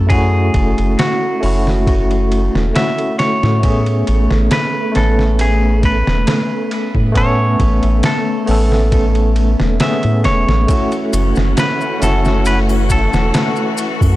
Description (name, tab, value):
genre	trip hop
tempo	68 BPM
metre	4/4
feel	straight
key	F# minor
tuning	A4 = 439 Hz
part	semi-hollow electric guitar	melody	0.0-14.2 s	F#4 to E5	-20 LUFS	equal	tape echo
part	bell-like tine electric piano	accompaniment	0.0-14.2 s	A3 to B4	-19 LUFS	equal	tremolo, low-pass filter, tape echo
part	round analog bass	bass	0.0-14.2 s	E1 to A2	-15 LUFS	equal	none
part	wind-like tuned noise texture	texture	0.0-14.2 s	A3	-24 LUFS	equal	built-in reverb
part	trip hop sampler-style drum kit	drums	0.1-14.2 s	hi-hat, kick drum, ride cymbal, snare drum	-19 LUFS	equal	vintage 12-bit sampler grit, studio reverb
part	clear symphonic string section	sustained chords	10.7-14.2 s	E3 to F#4	-23 LUFS	left 3 dB	none
part	maracas and triangle	percussion	10.7-14.2 s	none	-31 LUFS	left 4 dB	none
room	little or no reverb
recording	dry, gritty hardware recording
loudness	-12 LUFS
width	side -16 dB against mid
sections	0.0-14.2 A section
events	filter sweep on tine electric piano 0.0-14.2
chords	0.0 F#m7; 3.6 Amaj9; 10.7 F#m7